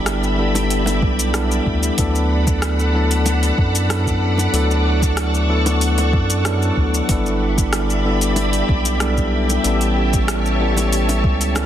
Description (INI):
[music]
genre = sunset chillout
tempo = 94 BPM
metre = 4/4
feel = straight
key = D major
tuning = A4 = 442 Hz
[part]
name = mellow tine electric piano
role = accompaniment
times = 0.0-11.7 s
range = F#3 to A4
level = -21 LUFS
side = moving between left 3 dB and right 4 dB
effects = auto-pan, tape echo
[part]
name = soft string machine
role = sustained chords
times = 0.0-11.7 s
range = G4 to C#6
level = -23 LUFS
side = equal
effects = ensemble chorus
[part]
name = round analog bass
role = bass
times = 0.0-11.7 s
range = G1 to F#2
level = -19 LUFS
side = equal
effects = none
[part]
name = smooth R&B drum kit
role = drums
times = 0.1-11.7 s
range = hi-hat, rim click, shaker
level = -25 LUFS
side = left 1 dB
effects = soft clipping on snare
[part]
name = bongos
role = percussion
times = 0.5-11.7 s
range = none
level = -29 LUFS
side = right 2 dB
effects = none
[part]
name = electronic kick drum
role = drums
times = 1.0-11.4 s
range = none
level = -20 LUFS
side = equal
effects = none
[sound]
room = light reverb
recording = dense, heavily limited modern master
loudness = -15 LUFS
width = side -11 dB against mid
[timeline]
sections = 0.0-11.7 A section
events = none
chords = 0.0 G6; 2.0 D6; 7.1 G6; 9.6 A7